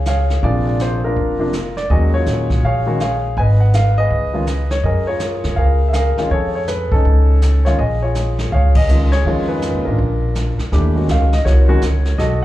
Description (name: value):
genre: jazz piano trio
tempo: 163 BPM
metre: 4/4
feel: swing 63% on 8ths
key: Bb minor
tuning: A4 = 440 Hz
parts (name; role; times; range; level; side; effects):
- warm grand piano; melody; 0.0-12.4 s; C3 to Ab5; -19 LUFS; equal; slapback echo
- upright bass; bass; 0.0-12.4 s; F1 to Db3; -16 LUFS; equal; none
- vintage brush drum kit; drums; 0.1-12.4 s; brushed snare drum, hi-hat, kick drum, ride cymbal, snare drum; -22 LUFS; equal; none
room: small room ambience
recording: live gig heard through the venue's PA, club reverb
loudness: -14 LUFS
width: side -15 dB against mid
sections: 0.0-10.7 A section; 10.7-12.4 B section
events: band accent 8.7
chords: 0.4 Bb7; 1.9 Ebm11; 3.4 Abm; 4.1 Db7sus2; 4.8 Gbmaj9; 6.3 F7alt; 7.8 Bbm7; 9.3 Fm7b5; 10.0 Bb; 10.7 Ebm7